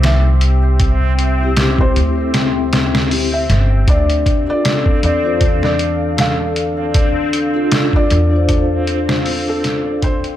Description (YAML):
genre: trip hop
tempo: 78 BPM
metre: 4/4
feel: swing 56% on 16ths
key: D minor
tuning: A4 = 440 Hz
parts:
  - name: felt-muted upright piano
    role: melody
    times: 0.0-10.4 s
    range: A4 to F5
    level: -22 LUFS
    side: equal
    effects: tape echo
  - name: deep dark ambient pad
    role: sustained chords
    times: 0.0-10.4 s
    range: C4 to F5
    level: -25 LUFS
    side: equal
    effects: chorus, built-in reverb
  - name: concert harp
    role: arpeggios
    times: 0.0-10.4 s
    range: C4 to G5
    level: -22 LUFS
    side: left 6 dB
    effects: tape echo
  - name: upright bass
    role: bass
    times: 0.0-10.4 s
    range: G1 to E2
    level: -17 LUFS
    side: equal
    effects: tube saturation
  - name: trip hop sampler-style drum kit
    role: drums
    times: 0.0-10.4 s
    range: hi-hat, kick drum, snare drum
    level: -16 LUFS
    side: equal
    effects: none
  - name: backwards swelling texture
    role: texture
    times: 0.0-10.4 s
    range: C4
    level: -28 LUFS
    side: right 1 dB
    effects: built-in reverb
  - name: vibraphone with soft mallets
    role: accompaniment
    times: 1.4-10.0 s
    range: C4 to C5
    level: -21 LUFS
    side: left 1 dB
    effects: tremolo, vintage 12-bit sampler grit, tape echo
room: studio ambience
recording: none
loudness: -13 LUFS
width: side -12 dB against mid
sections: 0.0-10.4 A section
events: fade-out 8.0-10.4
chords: 0.0 C; 3.9 Dm